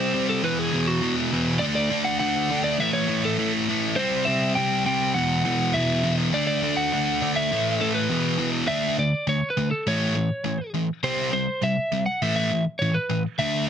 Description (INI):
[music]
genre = punk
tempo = 204 BPM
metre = 4/4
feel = straight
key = unclear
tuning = A4 = 440 Hz
[part]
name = lightly driven lead guitar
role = melody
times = 0.0-13.7 s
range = F#4 to G5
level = -26 LUFS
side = equal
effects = none
[part]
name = sludgy distorted guitar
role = riff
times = 0.0-13.7 s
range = E2 to D4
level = -23 LUFS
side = equal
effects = overdrive
[sound]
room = light reverb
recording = dense, heavily limited modern master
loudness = -21 LUFS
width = side -8 dB against mid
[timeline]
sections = 0.0-8.7 A section; 8.7-13.7 B section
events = none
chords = 0.4 E; 1.6 D; 2.8 A; 4.0 C; 5.1 E5; 6.3 D; 7.5 A5; 8.1 E5; 8.7 D5; 9.9 A; 11.0 C; 12.2 A5